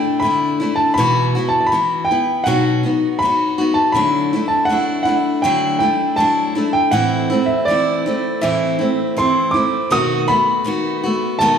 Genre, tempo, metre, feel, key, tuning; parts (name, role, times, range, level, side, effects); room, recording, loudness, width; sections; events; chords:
acoustic folk duo or small band; 81 BPM; 4/4; straight; A4 = 441 Hz
bright upright piano; melody; 0.0-11.6 s; D5 to D#6; -17 LUFS; right 1 dB
picked steel-string acoustic guitar; accompaniment; 0.0-11.6 s; A2 to F#4; -18 LUFS; left 1 dB
wet large studio reverb, RT60 1.3 s; heard from further back in the room; -15 LUFS; side -7 dB against mid
0.0-11.6 A section
0.0 Asus4; 1.0 Bsus4; 2.5 B; 4.0 Dadd9; 6.9 Am; 9.9 B7